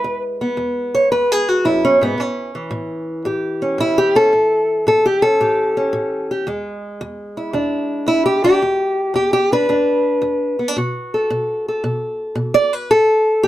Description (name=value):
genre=acoustic country blues, solo or duo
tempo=112 BPM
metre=4/4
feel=swing 68% on 8ths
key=E mixolydian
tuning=A4 = 436 Hz
part: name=fingerpicked old ladder-braced acoustic guitar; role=solo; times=0.0-13.5 s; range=E2 to D5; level=-15 LUFS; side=equal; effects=none
room=light reverb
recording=close, detailed microphones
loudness=-15 LUFS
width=side -14 dB against mid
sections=0.0-13.5 A section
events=steel-string acoustic guitar solo 0.0-13.5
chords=0.0 E; 2.2 A7; 6.5 E7; 10.8 B5; 12.9 N.C.